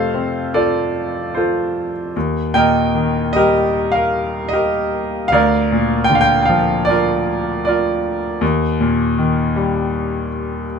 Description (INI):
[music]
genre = classical, lyrical solo piano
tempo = 77 BPM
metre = 4/4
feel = rubato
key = unclear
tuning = A4 = 440 Hz
[part]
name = bright grand piano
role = solo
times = 0.0-10.8 s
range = D2 to G5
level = -15 LUFS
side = equal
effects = none
[sound]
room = little or no reverb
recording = close, detailed microphones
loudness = -15 LUFS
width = side -6 dB against mid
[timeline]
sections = 0.0-10.8 A section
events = none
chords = 0.0 F; 2.2 Eb; 5.3 Bb/D; 8.4 Eb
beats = 0.54 1.35 | 2.15 2.95 3.75 4.54 | 5.33 6.11 6.88 7.65 | 8.42 9.18 9.93 10.69